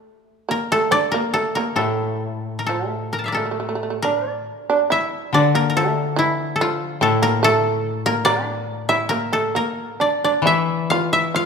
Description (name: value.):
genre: japanese traditional, Japanese chamber music.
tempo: 64-74 BPM.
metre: 2/4.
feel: rubato.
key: A miyako bushi.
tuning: A4 = 440 Hz.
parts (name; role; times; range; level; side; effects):
koto; melody; 0.0-11.5 s; E4 to Bb5; -21 LUFS; left 2 dB; none.
shamisen; second line; 0.5-11.5 s; E3 to F4; -22 LUFS; right 4 dB; none.
koto; accompaniment; 1.8-11.5 s; A2 to E3; -24 LUFS; left 6 dB; none.
room: moderate scoring stage reverb, RT60 2.0 s.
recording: minimal, uncompressed stereo recording.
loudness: -18 LUFS.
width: side -6 dB against mid.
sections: 0.0-3.6 A section; 3.6-11.5 B section.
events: none.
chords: none.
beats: | 0.07 0.92 | 1.77 2.67 | 3.58 4.47 | 5.35 6.19 | 7.03 7.84 | 8.67 9.54 | 10.44 11.33.